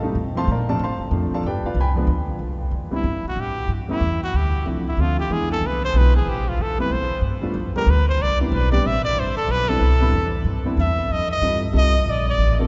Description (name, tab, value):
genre	jazz, small-group swing and bop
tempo	186 BPM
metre	3/4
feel	swing 62% on 8ths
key	C major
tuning	A4 = 440 Hz
part	warm grand piano	accompaniment	0.0-12.7 s	A2 to C6	-28 LUFS	equal	none
part	upright bass	bass	0.0-12.7 s	G1 to B2	-23 LUFS	equal	none
part	clear trumpet	melody	3.0-12.6 s	E4 to E5	-26 LUFS	equal	none
room	wet cathedral reverb, RT60 6.2 s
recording	recorded in a church or concert hall, nothing above 7.8 kHz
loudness	-21 LUFS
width	mono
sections	0.0-2.4 A section; 2.4-10.1 A section; 10.1-12.7 A section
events	trumpet solo 2.4-12.7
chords	0.5 Bbmaj9; 1.4 G7b9; 2.4 Cmaj7; 3.4 A7(no3); 4.3 Dm7; 5.3 E7; 6.3 Am7; 7.2 G7; 8.2 Cmaj7; 10.1 A7(no3); 11.1 F9; 12.1 Bbmaj9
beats	0.16 | 0.48 0.81 1.13 | 1.45 1.77 2.09 | 2.41 2.73 3.05 | 3.37 3.69 4.01 | 4.34 4.66 4.98 | 5.30 5.62 5.95 | 6.27 6.59 6.91 | 7.23 7.55 7.88 | 8.20 8.52 8.84 | 9.16 9.49 9.81 | 10.13 10.46 10.78 | 11.10 11.42 11.75 | 12.07 12.39